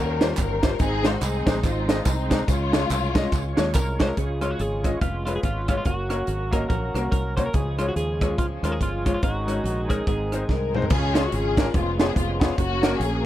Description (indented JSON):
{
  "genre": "uptempo gospel",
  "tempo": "143 BPM",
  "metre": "4/4",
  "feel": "swing 60% on 8ths",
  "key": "Db major",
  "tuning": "A4 = 439 Hz",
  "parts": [
    { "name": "warm studio string section", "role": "melody", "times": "0.0-3.8, 10.5-13.3 s", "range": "Ab3 to C5", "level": "-27 LUFS", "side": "left 3 dB", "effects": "none" },
    { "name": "bright concert grand piano", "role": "accompaniment", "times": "0.0-13.3 s", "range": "Ab2 to Eb5", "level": "-29 LUFS", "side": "left 2 dB", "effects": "none" },
    { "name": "overdriven tonewheel organ", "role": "sustained chords", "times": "0.0-13.3 s", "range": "Eb3 to F5", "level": "-34 LUFS", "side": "right 3 dB", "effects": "slow rotary speaker, chorus vibrato" },
    { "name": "fingered electric bass", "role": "bass", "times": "0.0-13.3 s", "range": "F1 to Eb2", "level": "-27 LUFS", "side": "equal", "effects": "none" },
    { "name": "crisp fusion drum kit", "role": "drums", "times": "0.2-13.1 s", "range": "crash cymbal, hi-hat, kick drum, rim click, snare drum, toms", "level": "-24 LUFS", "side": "right 1 dB", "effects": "none" },
    { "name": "tambourine and handclaps", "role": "percussion", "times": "0.2-4.1 s", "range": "none", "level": "-36 LUFS", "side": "right 3 dB", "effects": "none" },
    { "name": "twelve-string electric guitar", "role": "melody", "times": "3.8-10.7 s", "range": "F4 to C5", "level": "-30 LUFS", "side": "equal", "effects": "none" },
    { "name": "muted French horn section", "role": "sustained chords", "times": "4.2-10.9 s", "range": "Eb3 to Gb4", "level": "-36 LUFS", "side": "right 1 dB", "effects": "none" }
  ],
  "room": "little or no reverb",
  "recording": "none",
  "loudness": "-21 LUFS",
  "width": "side -13 dB against mid",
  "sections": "0.0-4.2 A section; 4.2-10.9 B section; 10.9-13.3 A section",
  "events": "drum fill 10.5-10.9",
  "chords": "0.0 Eb13; 0.8 Ab; 2.5 Db; 5.0 Db7/F; 5.9 Gb; 7.5 Db; 9.2 Absus4; 10.1 Ab; 10.9 Db; 11.7 Db7/F; 12.6 Gb"
}